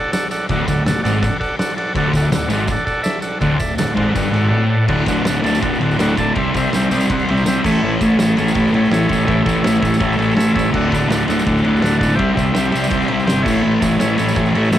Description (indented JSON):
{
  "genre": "garage rock duo or trio",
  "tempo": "164 BPM",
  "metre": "4/4",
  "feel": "straight",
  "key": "D major",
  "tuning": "A4 = 441 Hz",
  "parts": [
    { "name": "combo organ", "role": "sustained chords", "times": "0.0-14.8 s", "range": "G4 to A5", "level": "-22 LUFS", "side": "right 1 dB", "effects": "cassette tape" },
    { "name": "oversized low-tuned drum kit", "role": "drums", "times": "0.1-14.8 s", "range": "crash cymbal, kick drum, ride cymbal, snare drum", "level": "-23 LUFS", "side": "equal", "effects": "cassette tape" },
    { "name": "tambourine", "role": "percussion", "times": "0.1-14.8 s", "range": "none", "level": "-34 LUFS", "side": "right 4 dB", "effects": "none" },
    { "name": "thick fuzz guitar", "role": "riff", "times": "0.5-14.8 s", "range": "D2 to C4", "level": "-16 LUFS", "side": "equal", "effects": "distortion, cassette tape" },
    { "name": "fuzz fingered electric bass", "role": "bass", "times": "0.5-14.8 s", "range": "D1 to C#2", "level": "-24 LUFS", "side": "equal", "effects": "overdrive" }
  ],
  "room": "light reverb, small room ambience",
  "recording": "home recording on cassette",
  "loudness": "-14 LUFS",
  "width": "side -12 dB against mid",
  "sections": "0.0-4.9 A section; 4.9-14.8 B section",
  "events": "none",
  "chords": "0.0 D; 6.4 C; 7.6 A; 10.7 D; 12.2 C; 13.5 A"
}